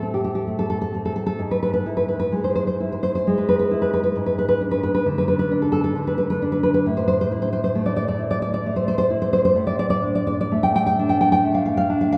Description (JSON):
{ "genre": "romantic piece for solo classical guitar", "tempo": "66 BPM", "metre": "3/4", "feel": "rubato", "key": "A minor", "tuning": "A4 = 436 Hz", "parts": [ { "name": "nylon-string guitar", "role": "solo", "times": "0.0-12.2 s", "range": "G#2 to G5", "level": "-21 LUFS", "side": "equal", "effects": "none" } ], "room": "wet cathedral reverb, RT60 4.9 s", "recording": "recorded in a church or concert hall", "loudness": "-21 LUFS", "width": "mono", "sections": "0.0-12.2 A section", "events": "none", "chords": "0.0 Am; 1.4 E/G#; 4.2 G#dim; 6.9 A5; 9.6 D5/A" }